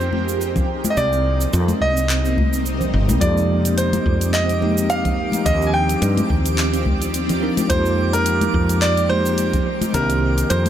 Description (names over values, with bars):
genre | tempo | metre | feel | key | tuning
sunset chillout | 107 BPM | 4/4 | swing 55% on 16ths | F dorian | A4 = 441 Hz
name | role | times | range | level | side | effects
bright grand piano | melody | 0.0-10.7 s | Bb4 to Ab5 | -22 LUFS | right 1 dB | tape echo, shimmer reverb
shimmering ambient pad | sustained chords | 0.0-10.7 s | C3 to D5 | -26 LUFS | right 1 dB | chorus, built-in reverb, phaser, shimmer reverb
woody fretless electric bass | bass | 0.0-10.7 s | G1 to G2 | -21 LUFS | equal | none
deep house drum kit | drums | 0.0-10.7 s | cabasa, handclaps, hi-hat | -26 LUFS | right 1 dB | studio reverb
congas | percussion | 0.1-10.7 s | none | -26 LUFS | left 3 dB | none
electronic kick drum | drums | 0.6-10.1 s | none | -24 LUFS | equal | studio reverb
bell-like tine electric piano | accompaniment | 3.2-10.7 s | Eb3 to Bb4 | -23 LUFS | equal | auto-pan, ping-pong delay
twinkling granular texture | texture | 3.9-10.7 s | D6 | -33 LUFS | right 3 dB | built-in reverb, shimmer reverb
room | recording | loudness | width
light reverb | none | -16 LUFS | side -10 dB against mid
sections
0.0-10.7 A section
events
none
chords
0.0 Fm11; 0.7 Cm9; 3.2 Fm11; 5.5 Ebmaj13; 7.7 Fm11; 9.7 Cm9